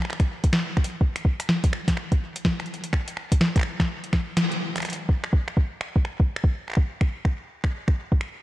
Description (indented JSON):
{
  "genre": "IDM",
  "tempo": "125 BPM",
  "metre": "4/4",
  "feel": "swing 62% on 16ths",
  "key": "none",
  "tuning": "none",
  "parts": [
    { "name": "electro analog drum machine", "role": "drums", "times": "0.0-8.3 s", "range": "finger snaps, hi-hat, snare drum", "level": "-27 LUFS", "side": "equal", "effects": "small room reverb" },
    { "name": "electronic kick drum", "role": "drums", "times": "0.2-8.2 s", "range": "none", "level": "-21 LUFS", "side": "equal", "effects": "small room reverb" }
  ],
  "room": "light reverb, digital ambience",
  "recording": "dark, warm production",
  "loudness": "-22 LUFS",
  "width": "side -16 dB against mid",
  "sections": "0.0-4.8 A section; 4.8-8.4 B section",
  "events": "kick drops out 4.4-4.8; band accent 4.4",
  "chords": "none"
}